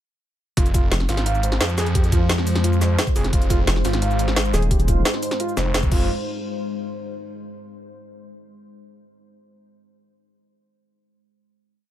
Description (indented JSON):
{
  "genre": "dark technical drum and bass",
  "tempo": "174 BPM",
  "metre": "4/4",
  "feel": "straight",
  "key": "F minor",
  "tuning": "A4 = 439 Hz",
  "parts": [
    { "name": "deep dark ambient pad", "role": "sustained chords", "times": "1.7-6.1 s", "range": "Ab3 to C5", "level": "-29 LUFS", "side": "left 2 dB", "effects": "chorus, built-in reverb, sidechain pumping" },
    { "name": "felt-muted upright piano", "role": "arpeggios", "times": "0.6-6.1 s", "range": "F4 to F5", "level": "-28 LUFS", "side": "right 3 dB", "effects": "sidechain pumping, dub echo" },
    { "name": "snarling distorted saw bass", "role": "bass", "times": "0.6-6.1 s", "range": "F1 to F2", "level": "-21 LUFS", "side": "equal", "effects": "distortion" },
    { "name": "drum and bass drum kit", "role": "drums", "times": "0.6-6.0 s", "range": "cabasa, crash cymbal, hi-hat, snare drum", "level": "-24 LUFS", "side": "equal", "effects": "overdrive" },
    { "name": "electronic kick drum", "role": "drums", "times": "0.6-6.0 s", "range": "none", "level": "-19 LUFS", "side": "equal", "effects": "overdrive" },
    { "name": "vowel-sweep wobble bass", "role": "bass", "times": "0.9-1.1, 3.7-5.0 s", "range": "Eb1 to F1", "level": "-20 LUFS", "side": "equal", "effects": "chorus" }
  ],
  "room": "little or no reverb",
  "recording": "none",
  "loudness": "-18 LUFS",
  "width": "side -12 dB against mid",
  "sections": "0.6-6.1 drop; 6.1-7.5 final hit",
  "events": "drop 0.6-6.1",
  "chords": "0.6 Fm; 6.1 N.C."
}